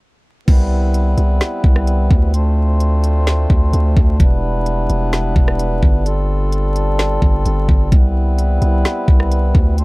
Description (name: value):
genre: hip hop, atmospheric cloud-rap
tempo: 129 BPM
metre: 4/4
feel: half-time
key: C major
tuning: A4 = 440 Hz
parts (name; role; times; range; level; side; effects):
- hand-pumped harmonium; sustained chords; 0.5-9.8 s; G3 to C5; -22 LUFS; equal; sidechain pumping
- long sustained 808-style bass; bass; 0.5-9.8 s; E1 to D2; -15 LUFS; equal; none
- trap drum kit; drums; 0.5-9.8 s; crash cymbal, hi-hat, kick drum, rim click, snare drum; -14 LUFS; equal; none
room: little or no reverb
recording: dark, warm production, vinyl crackle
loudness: -13 LUFS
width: side -23 dB against mid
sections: 0.5-9.8 A section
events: stop 0.0-0.5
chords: 0.5 Cmaj7; 2.3 Dm7; 4.2 Em7; 6.1 G9sus4; 7.9 Cmaj7